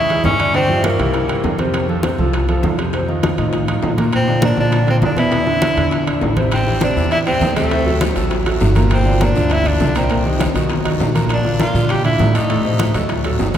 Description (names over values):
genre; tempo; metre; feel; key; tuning
latin, salsa; 201 BPM; 4/4; straight; F major; A4 = 438 Hz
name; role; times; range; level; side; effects
bright tenor saxophone; melody; 0.0-1.6, 4.2-12.9 s; A3 to G4; -20 LUFS; equal; none
bright baby grand piano; accompaniment; 0.0-13.6 s; A2 to D5; -20 LUFS; right 1 dB; none
upright bass; bass; 0.0-13.6 s; G1 to Bb2; -19 LUFS; equal; none
bongos; percussion; 0.1-13.6 s; none; -27 LUFS; left 5 dB; none
congas; percussion; 0.1-13.6 s; none; -24 LUFS; equal; none
timbales; percussion; 0.1-13.6 s; none; -26 LUFS; right 3 dB; none
guiro; percussion; 6.5-13.6 s; none; -34 LUFS; left 4 dB; none
room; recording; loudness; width
wet cathedral reverb, RT60 5.5 s; recorded in a church or concert hall; -14 LUFS; side -10 dB against mid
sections
0.0-13.6 A section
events
none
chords
0.0 Amaj7 (rootless); 0.5 Gm7; 1.1 C7; 1.7 F; 2.9 F7; 4.1 Bb; 5.3 E5; 6.5 Am7; 7.7 D7; 8.9 Gm7; 10.1 Cm7; 10.7 B; 11.3 Bb; 12.5 Adim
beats
0.25 | 0.55 0.84 1.14 1.44 | 1.74 2.04 2.34 2.64 | 2.94 3.23 3.53 3.83 | 4.13 4.43 4.73 5.03 | 5.33 5.62 5.92 6.22 | 6.52 6.82 7.12 7.42 | 7.71 8.01 8.31 8.61 | 8.91 9.21 9.51 9.81 | 10.11 10.40 10.70 11.00 | 11.30 11.60 11.90 12.20 | 12.50 12.80 13.10 13.40